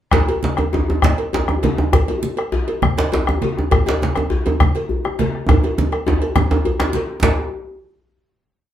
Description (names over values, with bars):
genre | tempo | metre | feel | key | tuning
west african traditional, West African drum ensemble | 136 BPM (dotted quarters) | 12/8 | straight | none | none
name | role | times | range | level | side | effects
bombo | percussion | 0.1-7.4 s | none | -19 LUFS | left 2 dB | none
congas | percussion | 0.1-7.4 s | none | -22 LUFS | right 2 dB | none
cowbell | percussion | 0.1-7.4 s | none | -26 LUFS | right 2 dB | none
djembe | percussion | 0.1-7.4 s | none | -23 LUFS | left 3 dB | none
djembe | percussion | 0.1-7.4 s | none | -19 LUFS | right 1 dB | none
room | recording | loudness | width
wet studio reverb, RT60 0.6 s | heard from further back in the room | -16 LUFS | side -11 dB against mid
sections
0.1-7.2 A section; 7.2-8.7 final hit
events
speeding up 0.1-8.7; drum fill 5.5-7.2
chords
none